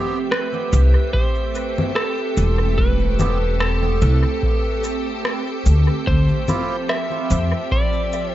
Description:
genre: ambient dub.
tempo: 73 BPM.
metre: 4/4.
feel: swing 57% on 16ths.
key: unclear.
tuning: A4 = 440 Hz.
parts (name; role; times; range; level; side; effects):
electric slide guitar; melody; 0.0-8.3 s; G4 to E5; -25 LUFS; equal; dub echo.
soft additive organ-like pad; sustained chords; 0.0-8.3 s; F3 to E5; -26 LUFS; right 2 dB; ensemble chorus, built-in reverb.
melodica; stabs; 0.0-6.8 s; B3 to G4; -32 LUFS; right 4 dB; dub echo.
electronic rim click, cabasa and congas; drums; 0.3-8.3 s; none; -25 LUFS; left 1 dB; dub echo.
upright bass; bass; 0.7-7.5 s; E1 to F2; -16 LUFS; equal; none.
electronic kick drum; drums; 1.1-7.9 s; none; -22 LUFS; equal; none.
room: little or no reverb.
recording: echo-heavy mix, nothing above 7.7 kHz.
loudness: -17 LUFS.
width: side -14 dB against mid.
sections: 0.0-8.3 A section.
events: none.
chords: 0.0 Am9; 6.1 Dm11.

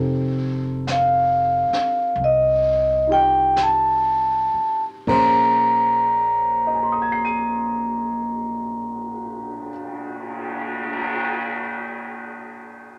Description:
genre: jazz ballad.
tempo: 38-50 BPM.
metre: 4/4.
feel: swing 66% on 8ths.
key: Bb minor.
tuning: A4 = 440 Hz.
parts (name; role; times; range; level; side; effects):
dark grand piano; accompaniment; 0.0-13.0 s; Bb2 to Eb7; -31 LUFS; equal; none.
upright bass; bass; 0.0-9.6 s; F1 to C2; -33 LUFS; equal; none.
vibraphone with medium mallets; melody; 0.9-9.7 s; Eb5 to Bb5; -20 LUFS; equal; none.
jazz brush drum kit; drums; 0.9-11.1 s; brushed snare drum, crash cymbal, cymbal swell, hi-hat, kick drum, snare drum; -33 LUFS; equal; none.
room: wet studio reverb, RT60 0.6 s.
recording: none.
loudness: -20 LUFS.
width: mono.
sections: 0.0-5.1 A section; 5.1-11.4 B section.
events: slowing down 0.0-5.1.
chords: 0.0 F9; 5.1 Bbm9.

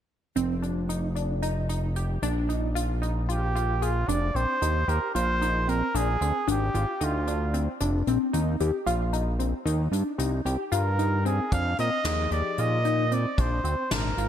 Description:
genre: progressive instrumental, band music in an uneven meter.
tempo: 226 BPM (eighths).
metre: 7/8.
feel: straight.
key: F dorian.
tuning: A4 = 440 Hz.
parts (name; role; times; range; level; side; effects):
tight sequenced synth; arpeggios; 0.4-14.3 s; C4 to Ab4; -30 LUFS; left 1 dB; chorus, phaser.
fat analog bass; bass; 0.4-14.3 s; F1 to Bb2; -26 LUFS; equal; none.
soft brush drum kit; drums; 0.4-14.3 s; hi-hat, kick drum, snare drum; -33 LUFS; left 1 dB; gated reverb.
warm trumpet; melody; 3.3-7.6, 10.7-14.3 s; F4 to F5; -28 LUFS; right 2 dB; ping-pong delay.
barky tine electric piano; accompaniment; 12.0-14.1 s; Bb2 to Ab4; -35 LUFS; left 5 dB; phaser.
room: moderate lush hall reverb, RT60 1.7 s, small room ambience.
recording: bright 1980s-style digital production.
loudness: -24 LUFS.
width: side -10 dB against mid.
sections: 0.4-4.1 A section; 4.1-14.3 B section.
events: none.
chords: 0.4 F5; 2.2 Bb7; 4.1 F5; 5.9 Bb7; 7.8 F5; 9.7 Ebadd9; 11.5 Fm7; 13.4 Bb7.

